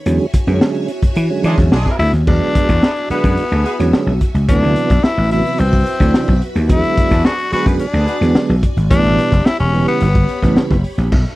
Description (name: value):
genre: funk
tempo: 108 BPM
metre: 4/4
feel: straight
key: unclear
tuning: A4 = 440 Hz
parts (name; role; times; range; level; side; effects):
- string machine, full ensemble; sustained chords; 0.0-11.4 s; F#4 to C#6; -27 LUFS; equal; ensemble chorus
- mellow tonewheel organ; stabs; 0.1-10.8 s; B2 to D4; -18 LUFS; right 4 dB; overdrive, fast rotary speaker
- vintage slap bass; bass; 0.1-11.2 s; E1 to E3; -15 LUFS; equal; none
- crunchy breakbeat drum kit; drums; 0.1-11.4 s; crash cymbal, hi-hat, kick drum, snare drum; -16 LUFS; equal; none
- warm horn section; second line; 1.4-3.7, 7.1-8.2 s; G#3 to B4; -24 LUFS; right 1 dB; none
- raspy tenor saxophone; melody; 2.0-10.7 s; B3 to F#4; -19 LUFS; left 3 dB; none
room: little or no reverb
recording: dry, close 1970s-style studio recording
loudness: -12 LUFS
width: side -18 dB against mid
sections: 0.0-2.3 A section; 2.3-11.1 B section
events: none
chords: 0.1 E13; 2.3 E9; 4.5 D13; 6.7 E9; 8.9 A9